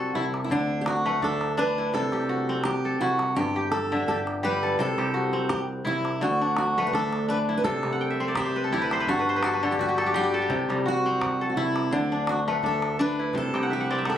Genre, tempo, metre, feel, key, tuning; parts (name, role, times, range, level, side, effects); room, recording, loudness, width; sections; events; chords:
west african traditional, West African string and xylophone music; 84 BPM; 4/4; swing 55% on 16ths; C lydian; A4 = 440 Hz
fingerpicked steel-string acoustic guitar; melody; 0.0-14.2 s; D4 to B4; -28 LUFS; right 2 dB
kora; arpeggios; 0.0-14.2 s; G2 to G5; -26 LUFS; left 2 dB
fingered electric bass; bass; 0.0-14.2 s; G1 to D2; -32 LUFS; right 1 dB
calabash; percussion; 0.3-14.2 s; -33 LUFS; equal
moderate small room reverb, RT60 0.5 s; recorded on a phone in the room, studio reverb; -23 LUFS; side -10 dB against mid
0.0-14.2 A section
kora fill 7.9-10.5, 13.5-14.2
0.0 C; 0.5 D5; 1.9 C; 3.4 G5; 4.8 C; 6.2 D5; 7.6 C; 9.1 G5; 10.5 C; 11.9 D5; 13.3 C